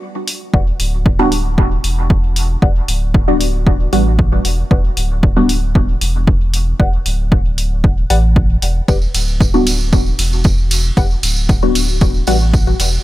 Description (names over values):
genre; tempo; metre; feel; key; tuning
dub techno; 115 BPM; 4/4; straight; E minor; A4 = 441 Hz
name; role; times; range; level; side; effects
punchy analog drum machine; drums; 0.3-12.9 s; hi-hat, ride cymbal; -23 LUFS; equal; none
filtered dub chord stab; riff; 0.5-12.4 s; G4 to F#5; -26 LUFS; left 4 dB; phaser, cassette tape, sidechain pumping, dub echo
warm sub bass; bass; 0.5-13.0 s; D1 to A1; -16 LUFS; equal; sidechain pumping
electronic kick drum; drums; 0.5-12.6 s; none; -13 LUFS; equal; none
filtered dub chord stab; stabs; 1.2-5.5, 9.5-12.4 s; G3 to F#4; -19 LUFS; left 1 dB; phaser, sidechain pumping, dub echo
tambourine; percussion; 8.9-13.0 s; none; -23 LUFS; right 4 dB; none
room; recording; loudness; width
little or no reverb; none; -12 LUFS; side -16 dB against mid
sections
0.5-13.0 A section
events
break 0.0-0.5; filter sweep on synth stab 0.5-13.0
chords
0.0 N.C.; 0.5 Em7